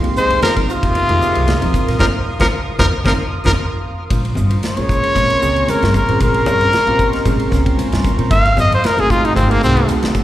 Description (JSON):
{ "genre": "electric jazz fusion", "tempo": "114 BPM", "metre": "4/4", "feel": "swing 53% on 16ths", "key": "Bb minor", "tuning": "A4 = 437 Hz", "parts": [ { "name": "tine electric piano", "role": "accompaniment", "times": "0.0-10.2 s", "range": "Ab3 to Bb5", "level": "-22 LUFS", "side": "right 1 dB", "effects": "wide subtle chorus, slapback echo" }, { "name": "evolving wavetable pad", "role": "sustained chords", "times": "0.0-10.2 s", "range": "Bb4 to Eb6", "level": "-28 LUFS", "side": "right 2 dB", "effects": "chorus, built-in reverb" }, { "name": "mellow electric guitar", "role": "stabs", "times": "0.0-10.2 s", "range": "Gb3 to C5", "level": "-30 LUFS", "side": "left 1 dB", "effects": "none" }, { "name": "upright bass", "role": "bass", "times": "0.0-10.1 s", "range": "Ab1 to F3", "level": "-18 LUFS", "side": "equal", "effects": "none" }, { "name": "modern studio drum kit", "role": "drums", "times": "0.0-10.2 s", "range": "hi-hat, kick drum, ride cymbal, snare drum", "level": "-21 LUFS", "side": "equal", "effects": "none" }, { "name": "clear trumpet", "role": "melody", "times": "0.2-9.9 s", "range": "Bb3 to F5", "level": "-17 LUFS", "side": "left 1 dB", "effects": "slapback echo, tape echo" }, { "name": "warm tenor saxophone", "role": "second line", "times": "0.2-3.5 s", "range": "C3 to Ab3", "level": "-25 LUFS", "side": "left 1 dB", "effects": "slapback echo" }, { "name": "congas", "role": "percussion", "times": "0.2-10.2 s", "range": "none", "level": "-25 LUFS", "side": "left 1 dB", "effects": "slapback echo" } ], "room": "small room ambience", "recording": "live gig heard through the venue's PA, recital hall reverb", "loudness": "-13 LUFS", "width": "side -14 dB against mid", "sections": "0.0-4.1 A section; 4.1-10.2 B section", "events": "band accent 2.0-4.1; tine electric piano fill 3.1-4.1, 6.7-8.3; drum fill 3.6-4.1; trumpet solo 4.1-10.2", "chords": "0.0 F7sus4; 4.1 Bbm9; 8.3 Ab7b9" }